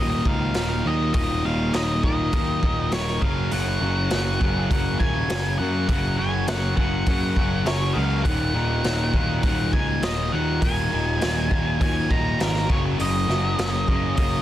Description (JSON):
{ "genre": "quiet-loud alternative rock", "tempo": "101 BPM", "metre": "4/4", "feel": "straight", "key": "Eb minor", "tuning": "A4 = 440 Hz", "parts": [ { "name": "octave-fuzz lead guitar", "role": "melody", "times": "0.0-14.4 s", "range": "Bb4 to Bb5", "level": "-28 LUFS", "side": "equal", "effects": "distortion" }, { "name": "electric guitar through a small old amp", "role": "arpeggios", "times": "0.0-14.4 s", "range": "Eb2 to Gb4", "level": "-32 LUFS", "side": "equal", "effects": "none" }, { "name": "distorted electric guitar", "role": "riff", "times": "0.0-14.4 s", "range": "Eb2 to Gb3", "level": "-26 LUFS", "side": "left 1 dB", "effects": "overdrive" }, { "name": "fuzz picked electric bass", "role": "bass", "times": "0.0-14.4 s", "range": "Eb1 to Gb2", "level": "-26 LUFS", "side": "equal", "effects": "overdrive" }, { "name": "raw garage drum kit", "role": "drums", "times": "0.3-14.3 s", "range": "hi-hat, kick drum, snare drum", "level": "-25 LUFS", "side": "equal", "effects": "none" } ], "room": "light reverb, studio reverb", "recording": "dense, heavily limited modern master", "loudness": "-20 LUFS", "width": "side -13 dB against mid", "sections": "0.0-14.4 A section", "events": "none", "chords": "0.0 Ebm; 12.7 Gb" }